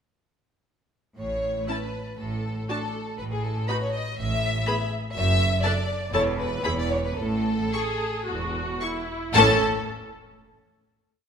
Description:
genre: quick classical-period movement for string orchestra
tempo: 108-124 BPM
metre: 4/4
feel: rubato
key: A major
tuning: A4 = 440 Hz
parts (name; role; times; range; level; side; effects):
- warm symphonic violin section; second line; 1.2-9.6 s; G#4 to E5; -28 LUFS; left 2 dB; none
- clear studio cello section; bass; 1.2-9.6 s; E2 to A2; -30 LUFS; right 2 dB; none
- rich symphonic double bass section; bass; 1.2-9.6 s; E1 to A1; -30 LUFS; right 2 dB; none
- rich symphonic violin section; melody; 1.7-9.6 s; A5 to C#6; -27 LUFS; left 4 dB; none
- clear symphonic viola section; accompaniment; 1.7-9.6 s; B3 to A4; -29 LUFS; right 1 dB; none
room: wet scoring stage reverb, RT60 1.5 s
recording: minimal, uncompressed stereo recording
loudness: -23 LUFS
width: side -7 dB against mid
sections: 1.2-9.4 A section; 9.4-11.3 final chord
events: none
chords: 1.2 A; 2.2 N.C.; 3.2 B7/A; 4.2 N.C.; 5.2 D/F#; 6.1 N.C.; 7.2 A5; 9.4 A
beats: | 1.18 1.68 2.18 2.69 | 3.19 3.69 4.18 4.67 | 5.16 5.64 6.14 6.65 | 7.18 7.73 8.28 8.82 | 9.36

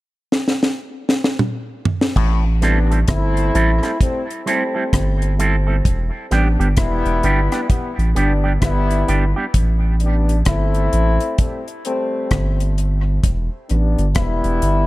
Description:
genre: dub reggae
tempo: 65 BPM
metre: 4/4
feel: swing 62% on 16ths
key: A minor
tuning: A4 = 440 Hz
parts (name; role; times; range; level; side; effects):
- deep reggae drum kit; drums; 0.3-14.9 s; crash cymbal, hi-hat, kick drum, rim click, snare drum, toms; -18 LUFS; equal; none
- auto-wah clav; riff; 2.2-2.4 s; A2; -29 LUFS; left 6 dB; overdrive, dub echo
- soft dub sub bass; bass; 2.2-14.9 s; E1 to A1; -17 LUFS; equal; none
- mellow trombone section; second line; 2.6-14.9 s; E3 to E4; -22 LUFS; left 2 dB; dub echo
- electric guitar with an envelope filter; accompaniment; 2.6-9.4 s; G3 to A4; -23 LUFS; right 3 dB; dub echo
room: small room ambience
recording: echo-heavy mix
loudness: -16 LUFS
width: side -18 dB against mid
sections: 0.0-2.2 A section; 2.2-14.9 B section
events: drum fill 0.3-2.2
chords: 0.0 N.C.; 2.2 Am7; 5.8 Em7; 9.5 Am7; 13.2 Em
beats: 0.31 1.24 | 2.16 3.08 4.00 4.93 | 5.85 6.77 7.70 8.62 | 9.54 10.46 11.39 12.31 | 13.23 14.16

